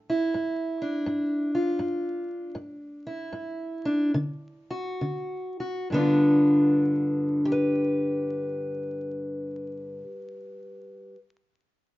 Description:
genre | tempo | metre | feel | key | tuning
blues | 64-85 BPM | 4/4 | swing 65% on 8ths | G mixolydian | A4 = 439 Hz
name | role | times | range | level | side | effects
fingerpicked steel-string acoustic guitar | solo | 0.0-11.2 s | G2 to B4 | -25 LUFS | equal | none
room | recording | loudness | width
wet studio reverb, RT60 0.7 s | band playing live in one room, vinyl crackle, nothing above 7.5 kHz | -24 LUFS | side -17 dB against mid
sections
0.0-5.9 A section; 5.9-9.7 B section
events
slowing down 0.0-5.9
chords
0.0 G5; 4.1 D; 5.9 G7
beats
0.35 1.06 1.79 | 2.54 3.33 4.14 5.00 | 5.91 6.84 7.78 8.72

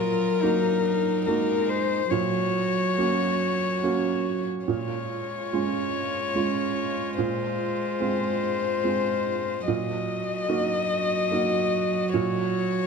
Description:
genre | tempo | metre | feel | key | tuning
neoclassical piano and strings | 72 BPM | 3/4 | rubato | Bb minor | A4 = 438 Hz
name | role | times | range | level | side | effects
warm violin | melody | 0.0-12.9 s | Bb4 to Eb5 | -27 LUFS | left 8 dB | none
warm cello | second line | 0.0-12.9 s | Gb3 to Ab3 | -31 LUFS | right 3 dB | none
felt-muted upright piano | accompaniment | 0.0-12.9 s | Bb2 to Gb4 | -29 LUFS | right 6 dB | none
warm viola | accompaniment | 0.0-12.9 s | Eb4 to Gb4 | -32 LUFS | right 5 dB | none
room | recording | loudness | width
moderate scoring stage reverb, RT60 1.6 s | dark, warm production | -23 LUFS | side -5 dB against mid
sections
0.0-4.7 A section; 4.7-12.9 A section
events
none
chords
0.0 Ebm/Bb; 2.1 Gb/Bb; 4.7 Bbm7; 7.2 Fm/Bb; 9.7 Ebm/Bb; 12.1 Gb/Bb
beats
0.43 1.26 | 2.12 2.98 3.83 | 4.68 5.53 6.36 | 7.19 8.01 8.84 | 9.67 10.50 11.32 | 12.14

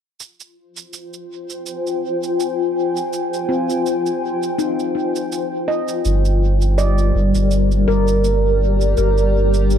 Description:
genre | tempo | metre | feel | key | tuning
ambient dub | 82 BPM | 4/4 | swing 55% on 16ths | F dorian | A4 = 437 Hz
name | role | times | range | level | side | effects
granular cloud pad | sustained chords | 1.0-9.8 s | G3 to Ab5 | -20 LUFS | left 1 dB | built-in reverb
shaker | drums | 0.2-9.8 s | none | -34 LUFS | right 7 dB | studio ambience, dub echo
handpan | arpeggios | 3.5-9.4 s | C4 to Eb5 | -24 LUFS | left 2 dB | low-pass filter, analog delay
warm sub bass | bass | 6.1-9.8 s | G1 | -16 LUFS | equal | none
room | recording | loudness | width
little or no reverb | echo-heavy mix | -16 LUFS | side -9 dB against mid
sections
0.2-9.8 A section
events
filter sweep on ambient pad 0.2-9.8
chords
0.2 Fm9; 6.1 Gm7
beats
| 0.20 0.93 1.66 2.39 | 3.12 3.86 4.59 5.32 | 6.05 6.78 7.51 8.25 | 8.98 9.71

